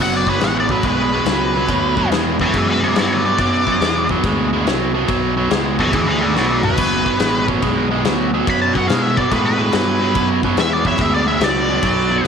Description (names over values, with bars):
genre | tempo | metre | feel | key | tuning
blues rock power trio and southern rock | 142 BPM | 4/4 | swing 66% on 8ths | B minor | A4 = 440 Hz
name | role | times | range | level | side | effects
octave-fuzz lead guitar | melody | 0.0-12.2 s | F#4 to B5 | -20 LUFS | left 1 dB | wah, distortion
biting overdriven guitar | riff | 0.0-12.3 s | B2 to G#3 | -18 LUFS | right 2 dB | none
fuzz fingered electric bass | bass | 0.0-12.3 s | F#1 to B2 | -23 LUFS | equal | overdrive
big rock drum kit | drums | 0.3-12.3 s | crash cymbal, kick drum, snare drum, toms | -22 LUFS | left 5 dB | none
room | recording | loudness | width
moderate spring reverb, RT60 1.9 s, studio reverb | 1960s-style stereo | -14 LUFS | side -7 dB against mid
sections
0.0-12.3 A section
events
lead electric guitar solo 0.0-12.3; drum fill 6.4-6.8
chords
0.0 Bm